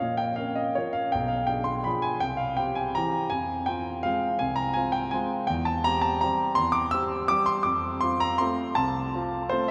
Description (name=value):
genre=classical, piano waltz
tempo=164 BPM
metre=3/4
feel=rubato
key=F minor, F major from 5.5 s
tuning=A4 = 440 Hz
part: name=warm concert grand piano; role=solo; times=0.0-9.7 s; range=B1 to E6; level=-27 LUFS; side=equal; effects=none
room=wet cathedral reverb, RT60 6.4 s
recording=in a vast, echoing space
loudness=-27 LUFS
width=mono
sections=0.0-9.7 A section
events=none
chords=0.0 Bbm; 1.1 Bdim7; 2.2 C; 3.3 Fm; 5.5 C7/E; 7.7 F